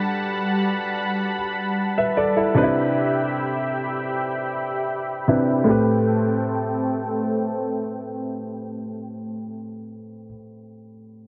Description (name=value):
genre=contemporary R&B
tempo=77 BPM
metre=4/4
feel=straight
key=A dorian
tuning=A4 = 440 Hz
part: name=clear concert grand piano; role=accompaniment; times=0.0-11.3 s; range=A2 to E5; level=-25 LUFS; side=equal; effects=none
part: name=lush unison pad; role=sustained chords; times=0.0-9.6 s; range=G3 to B5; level=-28 LUFS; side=equal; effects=chorus
room=light reverb, studio reverb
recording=low-pass filter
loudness=-23 LUFS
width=mono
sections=0.0-5.7 A section; 5.7-8.8 B section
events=filter sweep 0.0-5.7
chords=0.0 Gmaj9; 2.6 Cmaj7; 5.7 Am7